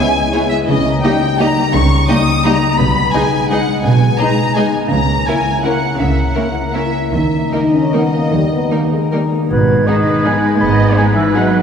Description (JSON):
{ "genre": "classical, orchestral ballroom waltz", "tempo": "143-184 BPM", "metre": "3/4", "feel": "rubato", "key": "G# minor", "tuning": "A4 = 439 Hz", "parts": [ { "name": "rich studio violin section", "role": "melody", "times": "0.0-11.4 s", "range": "G#4 to D#6", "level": "-19 LUFS", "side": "left 2 dB", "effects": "none" }, { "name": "rich studio violin section", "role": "second line", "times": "0.0-11.4 s", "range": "B3 to D#5", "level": "-25 LUFS", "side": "left 1 dB", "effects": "none" }, { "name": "rich studio viola section", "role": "accompaniment", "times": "0.0-11.6 s", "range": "G3 to D#5", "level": "-22 LUFS", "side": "right 1 dB", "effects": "none" }, { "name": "dark French horn section", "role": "sustained chords", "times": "0.0-11.5 s", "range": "G3 to E4", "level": "-21 LUFS", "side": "left 3 dB", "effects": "none" }, { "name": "concert harp", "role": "arpeggios", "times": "0.0-11.6 s", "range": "G#2 to B4", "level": "-18 LUFS", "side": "left 3 dB", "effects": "none" }, { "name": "rich studio cello section", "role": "bass", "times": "0.7-11.6 s", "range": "B2 to B3", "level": "-21 LUFS", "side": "right 2 dB", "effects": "none" }, { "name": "rich studio double bass section", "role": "bass", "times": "0.7-10.9 s", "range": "G#1 to D#2", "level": "-19 LUFS", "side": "right 2 dB", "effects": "none" }, { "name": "mellow clarinet", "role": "second line", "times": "9.5-11.6 s", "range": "D#4", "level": "-22 LUFS", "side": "left 1 dB", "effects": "none" }, { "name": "mellow oboe", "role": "second line", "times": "9.5-11.6 s", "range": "B4 to B5", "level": "-18 LUFS", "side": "right 1 dB", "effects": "none" }, { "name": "mellow silver concert flute", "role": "second line", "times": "9.5-11.6 s", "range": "G#6", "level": "-23 LUFS", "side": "equal", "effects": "none" } ], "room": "wet concert hall reverb, RT60 2.4 s", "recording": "heard from further back in the room", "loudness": "-12 LUFS", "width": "side -7 dB against mid", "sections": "0.0-9.5 A section; 9.5-11.6 A section", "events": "none", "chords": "0.0 C#m7; 0.7 D#7/C#; 2.8 G#m/B; 4.9 A#dim/C#; 7.1 D#; 9.5 G#m", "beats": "0.34 | 0.69 1.04 1.40 | 1.75 2.09 2.46 | 2.79 3.14 3.51 | 3.86 4.20 4.57 | 4.92 5.28 5.65 | 6.00 6.37 6.75 | 7.13 7.53 7.94 | 8.33 8.72 9.13 | 9.51 9.88 10.26 | 10.61 10.97 11.35" }